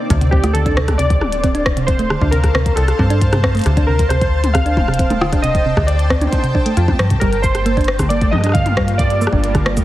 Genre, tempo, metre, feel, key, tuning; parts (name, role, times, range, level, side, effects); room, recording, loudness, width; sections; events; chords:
IDM; 135 BPM; 4/4; straight; D minor; A4 = 440 Hz
granular cloud pad; sustained chords; 0.0-9.8 s; G3 to A5; -26 LUFS; equal; built-in reverb, shimmer reverb
metallic FM bass; bass; 0.1-9.8 s; D1 to G2; -17 LUFS; equal
electronic kick drum; drums; 0.1-9.8 s; -19 LUFS; equal; studio reverb
glitchy drum kit; drums; 0.1-9.8 s; cabasa, hi-hat, rim click, toms; -22 LUFS; left 1 dB; studio reverb
thumb-piano-like synth pluck; arpeggios; 0.2-9.8 s; C3 to F4; -21 LUFS; right 2 dB; chorus, tape echo, shimmer reverb
warbly lo-fi synth keys; melody; 0.3-9.8 s; G4 to F5; -21 LUFS; equal; chorus, digital delay, shimmer reverb
flickering grainy texture; texture; 7.5-9.8 s; Bb3; -30 LUFS; equal
light reverb; heavily compressed radio sound, multiband compression; -13 LUFS; side -15 dB against mid
0.1-9.8 A section
0.1 Dm7; 7.2 Gm9